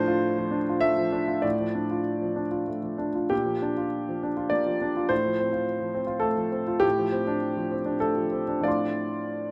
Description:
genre	neoclassical minimalist piano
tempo	88-106 BPM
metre	3/4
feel	rubato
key	D minor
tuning	A4 = 440 Hz
part	warm concert grand piano	solo	0.0-9.5 s	A2 to D6	-27 LUFS	equal	none
room	light reverb, small room ambience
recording	rough home demo mix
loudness	-27 LUFS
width	mono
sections	0.0-9.5 A section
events	none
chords	0.0 Dm7/A; 3.3 Bb; 5.1 F/A; 6.8 Dm7/A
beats	0.24 0.83 | 1.44 2.07 2.70 | 3.32 3.93 4.53 | 5.11 5.69 6.27 | 6.84 7.41 8.00 | 8.66 9.30

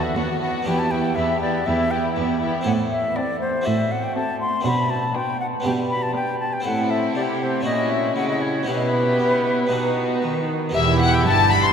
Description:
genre	classical, baroque-style concerto movement with solo episodes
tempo	120 BPM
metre	4/4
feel	straight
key	E minor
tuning	A4 = 440 Hz
part	concert flute	melody	0.0-11.7 s	B4 to C6	-23 LUFS	left 1 dB	none
part	warm chamber violin section	melody	0.0-11.7 s	F#4 to C6	-27 LUFS	left 6 dB	none
part	warm chamber violin section	second line	0.0-11.7 s	D4 to G4	-30 LUFS	left 3 dB	none
part	dark chamber viola section	accompaniment	0.0-11.7 s	B3 to E4	-28 LUFS	right 2 dB	none
part	harpsichord	accompaniment	0.0-11.7 s	D#2 to A4	-28 LUFS	equal	none
part	rich chamber cello section	bass	0.0-11.7 s	D#2 to B3	-25 LUFS	right 2 dB	none
part	rich chamber double bass section	bass	10.7-11.7 s	E1 to G1	-23 LUFS	right 5 dB	none
room	wet cathedral reverb, RT60 6.2 s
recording	none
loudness	-19 LUFS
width	side -7 dB against mid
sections	0.0-10.7 A section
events	none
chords	0.0 B7/D#; 0.7 Em; 2.7 Am; 3.7 F#dim/A; 4.7 Bm; 5.6 G/B; 6.6 Am; 7.7 F#7/A#; 8.7 Em/B; 9.7 B; 10.7 Em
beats	0.16 | 0.66 1.16 1.66 2.16 | 2.66 3.16 3.66 4.16 | 4.65 5.15 5.65 6.15 | 6.65 7.15 7.65 8.16 | 8.67 9.19 9.71 10.23 | 10.74 11.25

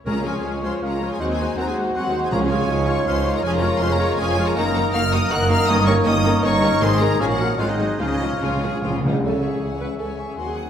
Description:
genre	quick classical-period movement for symphony orchestra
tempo	159 BPM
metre	3/4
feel	rubato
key	Db major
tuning	A4 = 440 Hz
part	rich studio violin section	melody	0.1-10.7 s	Db5 to Gb6	-28 LUFS	left 4 dB	none
part	clear studio violin section	second line	0.1-10.7 s	Bb3 to D#6	-32 LUFS	left 3 dB	none
part	mellow hollow small flute group	second line	0.1-10.7 s	G#5 to Gb6	-32 LUFS	left 2 dB	none
part	warm clarinet	second line	0.1-10.7 s	B#3 to Gb5	-30 LUFS	left 2 dB	none
part	warm oboe	second line	0.1-10.7 s	Bb4 to F#5	-33 LUFS	right 1 dB	none
part	rich chamber viola section	accompaniment	0.1-10.7 s	Eb3 to B4	-27 LUFS	right 1 dB	none
part	clear French horn section	sustained chords	0.1-10.7 s	Eb3 to Gb4	-29 LUFS	left 3 dB	none
part	dark trumpet section	stabs	0.1-9.0 s	Ab4 to Db5	-27 LUFS	right 2 dB	none
part	rich chamber double bass section	bass	0.1-10.7 s	F1 to Eb2	-26 LUFS	right 3 dB	none
part	warm chamber cello section	bass	0.1-10.7 s	Db2 to Db3	-27 LUFS	right 1 dB	none
part	timpani	percussion	0.1-2.8, 6.8-9.2 s	Ab2 to Db3	-27 LUFS	equal	none
part	dark bassoon	accompaniment	0.4-10.7 s	C#3 to Gb4	-28 LUFS	equal	none
room	wet scoring stage reverb, RT60 1.7 s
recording	none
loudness	-18 LUFS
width	side -9 dB against mid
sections	0.1-9.2 A section; 9.2-10.7 A section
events	timpani fill 8.0-9.2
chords	0.1 Db; 1.2 Ab7/Eb; 2.3 Db; 3.5 Db/F; 4.6 Ebm/Gb; 5.7 Eb7/G; 6.8 Ab; 7.2 Bbm; 7.6 Ab7; 8.0 Db; 9.2 C#m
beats	| 0.07 0.45 0.83 | 1.21 1.58 1.96 | 2.33 2.70 3.08 | 3.45 3.82 4.20 | 4.57 4.95 5.32 | 5.69 6.07 6.45 | 6.82 7.21 7.60 | 8.01 8.42 8.83 | 9.23 9.61 9.99 | 10.37

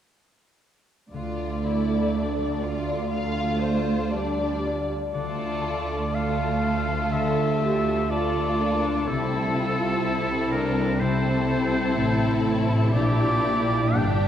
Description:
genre	classical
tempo	61 BPM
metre	4/4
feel	rubato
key	D minor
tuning	A4 = 438 Hz
part	rich studio violin section	melody	1.1-14.3 s	G4 to F5	-32 LUFS	left 2 dB	none
part	rich studio violin section	second line	1.1-14.3 s	A3 to F4	-31 LUFS	left 2 dB	none
part	warm studio viola section	accompaniment	1.1-14.3 s	G3 to A4	-29 LUFS	right 2 dB	none
part	concert harp	arpeggios	1.1-14.3 s	Bb2 to E5	-33 LUFS	left 6 dB	none
part	bright studio double bass section	bass	1.1-14.3 s	G1 to D2	-29 LUFS	right 1 dB	none
part	warm studio cello section	bass	1.1-14.3 s	D2 to C3	-28 LUFS	right 2 dB	none
part	clear oboe	second line	5.1-14.3 s	A4 to G5	-28 LUFS	equal	none
room	wet scoring stage reverb, RT60 1.6 s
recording	heard from further back in the room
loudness	-22 LUFS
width	side -10 dB against mid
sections	1.1-5.1 A section; 5.1-14.3 B section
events	none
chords	1.1 Dm; 9.1 Am/C; 12.9 Gm/Bb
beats	| 1.13 2.14 3.12 4.11 | 5.14 6.14 7.13 8.11 | 9.08 10.03 11.01 11.97 | 12.93 13.96

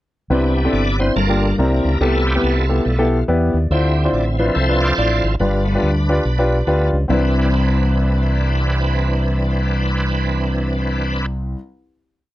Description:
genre	uptempo gospel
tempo	141 BPM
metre	4/4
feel	swing 61% on 8ths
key	C major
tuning	A4 = 440 Hz
part	clear grand piano	accompaniment	0.3-11.6 s	C2 to D5	-20 LUFS	left 1 dB	none
part	bright tonewheel organ	sustained chords	0.3-11.3 s	E3 to E5	-23 LUFS	right 1 dB	slow rotary speaker, chorus vibrato
part	fingered electric bass with an envelope filter	bass	0.3-11.5 s	G1 to E2	-18 LUFS	equal	none
room	little or no reverb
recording	dry, close 1970s-style studio recording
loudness	-15 LUFS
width	side -15 dB against mid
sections	0.3-7.1 breakdown; 7.1-10.5 final chord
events	tonewheel organ solo 0.3-7.1; grand piano fill 3.1-3.7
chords	0.3 Cmaj9; 1.2 Gm7; 1.6 C9; 2.0 Fmaj9#11/C; 3.7 Dm9; 5.4 G7; 7.1 Cmaj9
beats	| 0.30 0.73 1.16 1.58 | 2.01 2.43 2.86 3.28 | 3.70 4.13 4.55 4.98 | 5.40 5.82 6.25 6.67 | 7.09 7.52 7.94 8.37 | 8.79 9.22 9.65 10.07

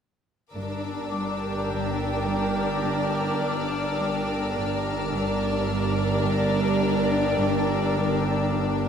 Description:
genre	cinematic, suspense film score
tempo	52 BPM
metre	4/4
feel	straight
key	G minor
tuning	A4 = 439 Hz
part	warm chamber violin section	melody	0.5-8.9 s	D5	-32 LUFS	right 1 dB	none
part	warm symphonic violin section	second line	0.5-8.9 s	Bb4	-33 LUFS	left 1 dB	none
part	warm chamber viola section	accompaniment	0.5-8.9 s	D4	-31 LUFS	left 4 dB	none
part	evolving wavetable pad	sustained chords	0.8-8.9 s	G4 to D5	-31 LUFS	equal	phaser, built-in reverb
part	warm symphonic cello section	riff	0.5-8.9 s	G2 to G3	-34 LUFS	left 2 dB	none
part	rich symphonic double bass section	bass	0.5-8.9 s	G1	-32 LUFS	right 2 dB	none
part	warm symphonic cello section	bass	0.5-8.9 s	G2	-31 LUFS	right 5 dB	none
part	bowed-like drone	drone	1.4-8.9 s	G1	-32 LUFS	equal	built-in reverb
part	warm symphonic violin section	texture	0.5-8.9 s	D6 to F6	-38 LUFS	left 3 dB	none
part	celesta	texture	1.1-8.9 s	D6	-39 LUFS	left 6 dB	none
room	wet scoring stage reverb, RT60 2.0 s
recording	none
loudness	-23 LUFS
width	side -7 dB against mid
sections	0.5-8.9 A section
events	none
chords	0.5 Gm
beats	| 0.54 1.69 2.84 3.99 | 5.11 6.24 7.37 8.54

